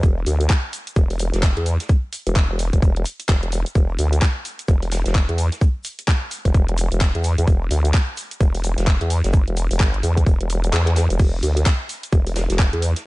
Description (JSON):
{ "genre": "bass house", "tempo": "129 BPM", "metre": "4/4", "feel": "swing 60% on 16ths", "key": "E minor", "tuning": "A4 = 445 Hz", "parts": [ { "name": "vowel-sweep wobble bass", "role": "bass", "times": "0.0-12.9 s", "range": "E1 to E2", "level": "-20 LUFS", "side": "equal", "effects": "chorus, overdrive, sidechain pumping" }, { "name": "electronic kick drum", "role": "drums", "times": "0.0-12.7 s", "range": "none", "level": "-16 LUFS", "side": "equal", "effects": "overdrive" }, { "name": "garage drum kit", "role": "drums", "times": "0.0-13.0 s", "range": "cabasa, crash cymbal, handclaps, hi-hat", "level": "-27 LUFS", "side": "equal", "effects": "overdrive" }, { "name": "vintage brush drum kit", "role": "drums", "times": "0.0-13.0 s", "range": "hi-hat, shaker, snare drum", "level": "-37 LUFS", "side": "right 1 dB", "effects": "none" } ], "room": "small room reverb", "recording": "dark, warm production, nothing above 10.4 kHz", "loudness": "-17 LUFS", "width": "side -21 dB against mid", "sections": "0.0-13.1 A section", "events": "kick drops out 10.7-11.2", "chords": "none" }